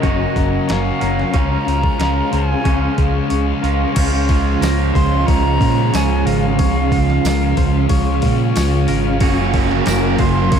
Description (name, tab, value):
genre	rock, shoegaze and dream pop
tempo	92 BPM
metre	4/4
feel	straight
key	Db major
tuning	A4 = 441 Hz
part	silver concert flute	melody	0.0-10.6 s	Eb5 to C6	-24 LUFS	equal	analog delay
part	glassy FM pad	sustained chords	0.0-10.6 s	Db4 to Bb5	-23 LUFS	left 1 dB	ensemble chorus, built-in reverb
part	twangy electric guitar	arpeggios	0.0-10.6 s	Bb4 to Db5	-29 LUFS	left 6 dB	wide subtle chorus, analog delay
part	biting overdriven guitar	riff	0.0-10.6 s	Gb2 to Gb4	-21 LUFS	right 11 dB	reverse reverb
part	thick fuzz guitar	riff	0.0-10.6 s	Gb2 to Db4	-22 LUFS	left 7 dB	distortion, lush chorus
part	fingered electric bass	bass	0.0-10.6 s	Gb1 to Bb2	-19 LUFS	equal	none
part	crisp 8-bit digital drum machine	drums	0.0-10.6 s	crash cymbal, hi-hat, kick drum, snare drum	-20 LUFS	equal	overdrive
part	tambourine	percussion	4.6-10.0 s	none	-32 LUFS	right 10 dB	none
room	moderate lush hall reverb, RT60 2.6 s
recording	dreamy mix soaked in reverb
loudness	-14 LUFS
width	side -7 dB against mid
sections	0.0-4.0 A section; 4.0-10.6 B section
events	kick and snare drop out 3.3-4.0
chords	0.0 Gb; 1.3 Db; 9.2 Gbmaj7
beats	0.03 0.68 | 1.34 1.99 2.65 3.30 | 3.96 4.61 5.27 5.92 | 6.58 7.23 7.89 8.54 | 9.20 9.85 10.51